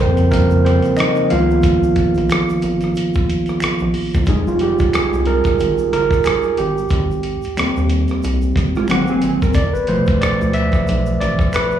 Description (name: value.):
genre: R&B, neo-soul.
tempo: 91 BPM.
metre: 4/4.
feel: swing 58% on 16ths.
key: Ab major.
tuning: A4 = 438 Hz.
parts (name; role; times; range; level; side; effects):
overdriven tine electric piano; accompaniment; 0.0-11.8 s; B2 to F5; -16 LUFS; right 1 dB; slapback echo.
rubbery square bass; bass; 0.0-11.4 s; F1 to F2; -20 LUFS; equal; none.
dusty soul sampler-style drum kit; drums; 0.2-11.7 s; hi-hat, kick drum, rim click; -20 LUFS; equal; none.
tube shaker and finger snaps; percussion; 0.2-11.8 s; none; -37 LUFS; right 3 dB; slapback echo.
mellow electric guitar; second line; 8.8-9.7 s; Ab3 to Bb4; -21 LUFS; right 6 dB; ensemble chorus, slapback echo.
room: little or no reverb.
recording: live gig heard through the venue's PA, club reverb, studio reverb.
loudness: -14 LUFS.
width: side -10 dB against mid.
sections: 0.0-4.3 A section; 4.3-11.8 B section.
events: tine electric piano solo 0.0-4.3, 4.3-11.8.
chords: 0.0 Eb13; 1.3 Db13; 4.3 Fm7; 6.6 Abmaj9; 8.9 Ab9; 9.5 G9.